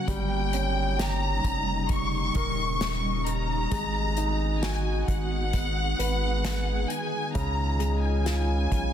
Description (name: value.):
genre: pop ballad.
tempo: 66 BPM.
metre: 4/4.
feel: straight.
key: unclear.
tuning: A4 = 439 Hz.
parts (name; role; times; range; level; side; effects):
warm studio violin section; melody; 0.0-8.9 s; F#5 to C#6; -30 LUFS; left 2 dB; ping-pong delay.
warm concert grand piano; accompaniment; 0.0-8.9 s; C#3 to C#5; -33 LUFS; right 1 dB; none.
shimmering ambient pad; sustained chords; 0.0-8.9 s; C#3 to G#4; -33 LUFS; equal; chorus, built-in reverb.
saturated sub bass; bass; 0.1-8.9 s; D#1 to C#2; -28 LUFS; equal; none.
unplugged drum kit; drums; 0.1-8.9 s; hi-hat, kick drum, snare drum; -32 LUFS; equal; none.
room: light reverb, small room ambience.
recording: dense, heavily limited modern master.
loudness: -24 LUFS.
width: side -9 dB against mid.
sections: 0.0-8.9 A section.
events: none.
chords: 0.1 D#7; 3.7 G#m7; 7.4 C#add9.